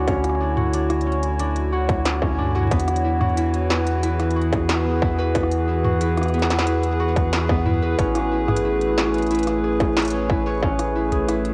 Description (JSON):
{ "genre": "IDM", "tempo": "91 BPM", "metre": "4/4", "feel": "straight", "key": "unclear", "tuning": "A4 = 440 Hz", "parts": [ { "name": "hollow soft pad", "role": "sustained chords", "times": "0.0-11.5 s", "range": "D3 to C#5", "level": "-27 LUFS", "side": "equal", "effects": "chorus, cassette tape" }, { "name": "concert harp", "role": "arpeggios", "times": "0.0-11.5 s", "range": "B3 to C#5", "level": "-26 LUFS", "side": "equal", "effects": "low-pass filter, cassette tape, analog delay" }, { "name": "round analog bass", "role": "bass", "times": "0.0-11.5 s", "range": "A1 to E2", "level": "-27 LUFS", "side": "equal", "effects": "tube saturation" }, { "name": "electronic kick drum", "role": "drums", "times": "0.1-10.8 s", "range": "none", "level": "-25 LUFS", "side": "equal", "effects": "distortion, small room ambience, cassette tape" }, { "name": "industrial drum kit", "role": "drums", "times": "0.1-11.5 s", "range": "hi-hat, rim click, snare drum, toms", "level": "-28 LUFS", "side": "equal", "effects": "small room ambience, cassette tape" } ], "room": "light reverb", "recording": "home recording on cassette", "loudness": "-21 LUFS", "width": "mono", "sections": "0.0-11.5 A section", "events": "filter sweep on harp 0.0-11.5", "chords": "0.0 Dmaj7; 2.7 Eadd9; 8.0 Amaj7" }